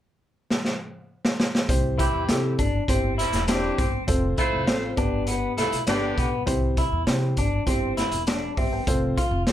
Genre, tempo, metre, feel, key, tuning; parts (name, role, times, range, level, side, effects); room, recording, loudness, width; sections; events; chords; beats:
uptempo 1960s-style soul; 100 BPM; 4/4; straight; C major; A4 = 439 Hz
raw garage drum kit; drums; 0.5-9.5 s; hi-hat, kick drum, snare drum; -25 LUFS; equal
warm upright piano; accompaniment; 1.7-9.5 s; B3 to G5; -28 LUFS; equal
upright bass; bass; 1.7-9.5 s; E1 to C3; -28 LUFS; equal
mellow saxophone section; second line; 2.0-6.3 s; C3 to C5; -29 LUFS; equal
electric guitar through a small old amp; riff; 2.0-9.4 s; B3 to F4; -28 LUFS; left 2 dB; spring reverb
light reverb; -22 LUFS; side -12 dB against mid
0.0-1.7 A section; 1.7-9.5 B section
drum fill 0.5-1.7
0.0 N.C.; 1.7 C; 4.1 F; 5.0 G; 6.5 C; 8.9 F
0.49 1.09 | 1.69 2.29 2.88 3.48 | 4.08 4.68 5.28 5.88 | 6.47 7.07 7.67 8.27 | 8.87 9.47